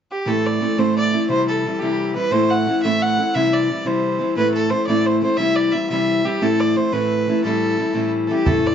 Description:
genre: celtic folk, Celtic jig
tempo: 117 BPM (dotted quarters)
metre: 6/8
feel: straight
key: A minor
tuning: A4 = 440 Hz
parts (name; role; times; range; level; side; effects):
- clear fiddle; melody; 0.1-8.7 s; G4 to F#5; -22 LUFS; right 1 dB; none
- fingerpicked steel-string acoustic guitar; accompaniment; 0.3-8.7 s; A2 to E4; -18 LUFS; left 1 dB; none
- bodhran; percussion; 8.5-8.7 s; none; -20 LUFS; right 2 dB; none
room: moderate studio reverb, RT60 0.6 s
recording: dark, warm production, nothing above 7.6 kHz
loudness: -17 LUFS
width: side -8 dB against mid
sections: 0.3-8.5 A section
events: none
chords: 0.3 Am; 1.3 C; 2.3 Am; 3.3 C; 4.4 Am; 5.4 C; 6.4 Am; 7.4 Am7

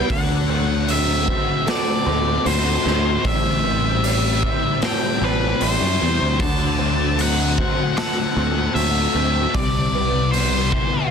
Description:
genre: rock, shoegaze and dream pop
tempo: 76 BPM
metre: 4/4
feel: straight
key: D mixolydian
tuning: A4 = 440 Hz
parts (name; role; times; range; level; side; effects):
- octave-fuzz lead guitar; melody; 0.0-11.1 s; B4 to A5; -24 LUFS; right 1 dB; distortion, tape echo
- fingerpicked twelve-string acoustic guitar; arpeggios; 0.0-11.1 s; F#3 to A4; -29 LUFS; right 6 dB; analog chorus, tape echo
- electric guitar through a small old amp; riff; 0.0-11.1 s; A2 to C4; -31 LUFS; right 14 dB; reverse reverb
- thick fuzz guitar; riff; 0.0-11.1 s; A2 to F#4; -24 LUFS; left 13 dB; distortion, ensemble chorus
- modern bright picked electric bass; bass; 0.1-10.8 s; A1 to F#2; -22 LUFS; right 1 dB; none
- raw garage drum kit; drums; 0.1-10.9 s; hi-hat, kick drum, snare drum; -24 LUFS; equal; none
room: small room ambience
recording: dense, heavily limited modern master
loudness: -17 LUFS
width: side -6 dB against mid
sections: 0.0-11.1 A section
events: none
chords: 0.1 D7; 3.2 Am7; 6.4 D7; 9.5 Cmaj7

